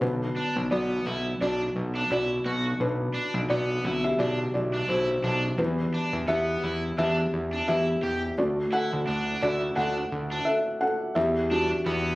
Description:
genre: pop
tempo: 86 BPM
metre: 4/4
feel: swing 56% on 16ths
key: unclear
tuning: A4 = 440 Hz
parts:
  - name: felt-muted upright piano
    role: accompaniment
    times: 0.0-12.2 s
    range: D3 to F#5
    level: -27 LUFS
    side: equal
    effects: none
  - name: fat analog bass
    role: bass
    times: 0.0-12.1 s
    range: B1 to E2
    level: -29 LUFS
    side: equal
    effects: none
  - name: cranked stack guitar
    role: riff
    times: 0.4-12.2 s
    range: B3 to G4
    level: -31 LUFS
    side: right 1 dB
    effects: overdrive
room: light reverb, small room ambience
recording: recorded on a phone in the room, studio reverb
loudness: -24 LUFS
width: side -20 dB against mid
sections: 0.0-11.2 A section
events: felt piano solo 0.0-11.2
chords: 0.0 Bm; 5.6 Em; 8.4 D; 11.2 Em7

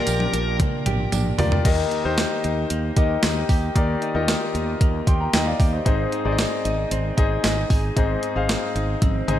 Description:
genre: 1980s-style pop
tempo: 114 BPM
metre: 4/4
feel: straight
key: unclear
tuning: A4 = 442 Hz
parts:
  - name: high-gain lead guitar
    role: melody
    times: 0.0-0.6 s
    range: Bb4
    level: -30 LUFS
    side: right 1 dB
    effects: distortion, ping-pong delay
  - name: clear concert grand piano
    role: accompaniment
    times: 0.0-9.4 s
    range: Ab2 to C6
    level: -25 LUFS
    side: left 4 dB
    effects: none
  - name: direct-recorded clean electric guitar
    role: riff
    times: 0.0-9.4 s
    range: F3 to Ab4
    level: -30 LUFS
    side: right 4 dB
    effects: wide subtle chorus, ping-pong delay
  - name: fretless electric bass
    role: bass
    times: 0.1-9.4 s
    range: Ab1 to Eb2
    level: -25 LUFS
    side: equal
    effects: none
  - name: clean 12-bit digital drum machine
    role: drums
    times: 0.1-9.4 s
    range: crash cymbal, hi-hat, kick drum, snare drum, toms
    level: -22 LUFS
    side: equal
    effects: overdrive, gated reverb
  - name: tambourine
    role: percussion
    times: 0.1-8.6 s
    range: none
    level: -38 LUFS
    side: right 10 dB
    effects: none
room: light reverb, digital ambience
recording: none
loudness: -19 LUFS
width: side -12 dB against mid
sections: 0.0-1.6 A section; 1.6-9.4 B section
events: drum fill 0.0-1.6, 9.0-9.4; grand piano fill 4.8-5.9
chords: 0.0 Bb6; 1.6 Eb; 5.9 Ab

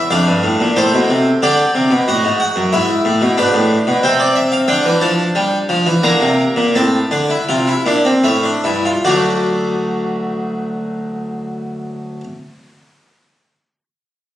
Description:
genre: classical, baroque-style 3-part fugue for harpsichord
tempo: 71-93 BPM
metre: 3/4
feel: straight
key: unclear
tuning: A4 = 441 Hz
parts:
  - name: harpsichord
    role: solo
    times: 0.0-12.2 s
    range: D2 to Bb5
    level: -13 LUFS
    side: equal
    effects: none
room: wet recital hall reverb, RT60 1.4 s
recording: recorded on a phone in the room, studio reverb, compression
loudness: -13 LUFS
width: side -12 dB against mid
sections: 0.0-9.0 A section; 9.0-14.1 B section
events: slowing down 3.7-9.0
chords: 0.1 Dm/F; 0.8 Am; 2.1 F#m69; 2.7 E/G#; 4.0 Cadd9; 4.7 Dm; 6.0 Bbadd9; 6.7 D5/A; 8.2 A7; 9.0 D

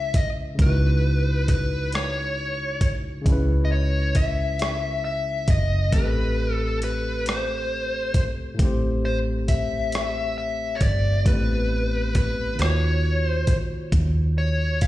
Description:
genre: slow six-eight R&B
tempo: 45 BPM (dotted quarters)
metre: 6/8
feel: straight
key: unclear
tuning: A4 = 440 Hz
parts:
  - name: dark smooth lead guitar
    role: melody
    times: 0.0-14.9 s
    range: B4 to E#5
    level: -27 LUFS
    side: left 1 dB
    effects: overdrive, digital delay
  - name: barky tine electric piano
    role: accompaniment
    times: 0.0-14.9 s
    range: A2 to C#5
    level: -29 LUFS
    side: left 1 dB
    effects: overdrive
  - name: vintage muted fingered electric bass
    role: bass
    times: 0.0-14.9 s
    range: F#1 to D#2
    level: -24 LUFS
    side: equal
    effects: none
  - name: dusty soul sampler-style drum kit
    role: drums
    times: 0.1-14.9 s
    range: hi-hat, kick drum, rim click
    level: -22 LUFS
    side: equal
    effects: none
room: little or no reverb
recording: played on a big sound system in a bare room, stone room reverb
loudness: -20 LUFS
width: side -15 dB against mid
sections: 0.0-14.9 A section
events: none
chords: 0.0 C#m9; 5.9 Am9; 12.6 D#m9

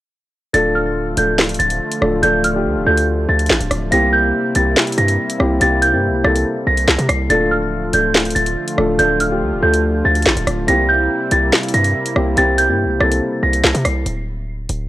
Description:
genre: hip hop, drill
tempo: 142 BPM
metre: 4/4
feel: half-time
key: D minor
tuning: A4 = 440 Hz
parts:
  - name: small celesta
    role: melody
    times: 0.5-14.0 s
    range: F6 to C7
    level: -18 LUFS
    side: right 1 dB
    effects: low-pass filter, analog delay
  - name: dark concert grand piano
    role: accompaniment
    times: 0.5-14.1 s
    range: A3 to A4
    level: -20 LUFS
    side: left 1 dB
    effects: low-pass filter
  - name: warm analog pad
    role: sustained chords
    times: 0.5-14.0 s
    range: C3 to F4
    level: -25 LUFS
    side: equal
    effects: chorus
  - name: hard-hitting 808-style bass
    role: bass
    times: 0.5-14.9 s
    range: D1 to C3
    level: -20 LUFS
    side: equal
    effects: none
  - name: drill drum kit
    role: drums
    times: 0.5-14.8 s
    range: handclaps, hi-hat, rim click, snare drum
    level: -18 LUFS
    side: equal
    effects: none
room: small room ambience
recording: dry, gritty hardware recording, cassette tape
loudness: -13 LUFS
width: side -15 dB against mid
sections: 0.5-14.1 A section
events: break 14.1-14.9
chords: 0.5 Dm; 3.9 C7; 7.3 Dm; 10.7 C7; 14.1 D5

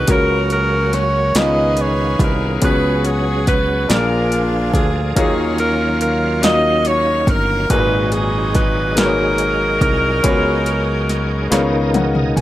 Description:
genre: slow gospel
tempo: 47 BPM (dotted quarters)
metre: 6/8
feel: straight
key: unclear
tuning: A4 = 441 Hz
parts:
  - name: bright saxophone section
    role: melody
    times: 0.0-12.4 s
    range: C#4 to D#5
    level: -18 LUFS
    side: right 1 dB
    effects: none
  - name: warm grand piano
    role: accompaniment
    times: 0.0-12.4 s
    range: G#2 to G#5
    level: -21 LUFS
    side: left 2 dB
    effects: none
  - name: bright tonewheel organ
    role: sustained chords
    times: 0.0-12.4 s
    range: C#3 to E#5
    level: -25 LUFS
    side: right 2 dB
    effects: slow rotary speaker, overdrive, chorus vibrato
  - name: fingered electric bass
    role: bass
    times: 0.0-12.4 s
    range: E#1 to D#2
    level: -20 LUFS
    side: equal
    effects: none
  - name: deep house drum kit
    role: drums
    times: 0.1-12.4 s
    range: hi-hat, kick drum, snare drum, toms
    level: -19 LUFS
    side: equal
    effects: overdrive
room: light reverb, digital ambience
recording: none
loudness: -14 LUFS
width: side -14 dB against mid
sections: 0.0-12.4 A section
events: drum fill 11.5-12.4; grand piano fill 11.5-12.4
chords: 0.1 F#/C#; 1.4 C#9; 2.6 C#7sus4; 3.9 A#7; 5.2 D#m9; 7.7 G#m9; 10.2 C#7sus4; 11.5 C#13

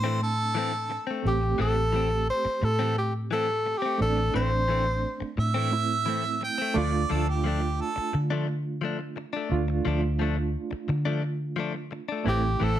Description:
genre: blues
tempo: 87 BPM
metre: 4/4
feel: straight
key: A minor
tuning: A4 = 440 Hz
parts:
  - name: warm harmonica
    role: second line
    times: 0.0-1.1, 5.4-8.1 s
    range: G4 to G5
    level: -29 LUFS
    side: right 4 dB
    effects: none
  - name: barky reed electric piano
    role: accompaniment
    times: 0.0-12.8 s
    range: A3 to G4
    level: -33 LUFS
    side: right 6 dB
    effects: overdrive, tremolo
  - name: direct-recorded clean electric guitar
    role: stabs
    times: 0.0-12.8 s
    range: E3 to D4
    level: -33 LUFS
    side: left 7 dB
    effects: none
  - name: vintage muted fingered electric bass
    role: bass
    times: 0.0-12.8 s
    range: A1 to D3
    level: -28 LUFS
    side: equal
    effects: none
  - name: breathy tenor saxophone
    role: melody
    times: 1.3-5.3, 12.3-12.8 s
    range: G4 to C5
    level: -27 LUFS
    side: equal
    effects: none
room: light reverb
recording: none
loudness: -24 LUFS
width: side -12 dB against mid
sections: 0.0-12.8 A section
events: none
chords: 0.0 Am; 6.8 Dm; 12.3 Am

